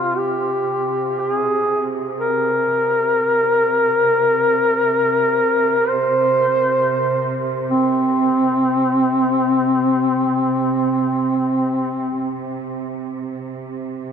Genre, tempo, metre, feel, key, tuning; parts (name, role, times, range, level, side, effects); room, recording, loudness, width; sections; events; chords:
caucasian folk, Caucasian lament; free time; A4 = 441 Hz
mellow duduk; melody; 0.0-12.4 s; C4 to C5; -17 LUFS; equal
rich studio string section; drone; 0.0-14.1 s; C3; -26 LUFS; right 3 dB
wet cathedral reverb, RT60 7.0 s; dark, warm production; -16 LUFS; side -7 dB against mid
0.0-14.1 A section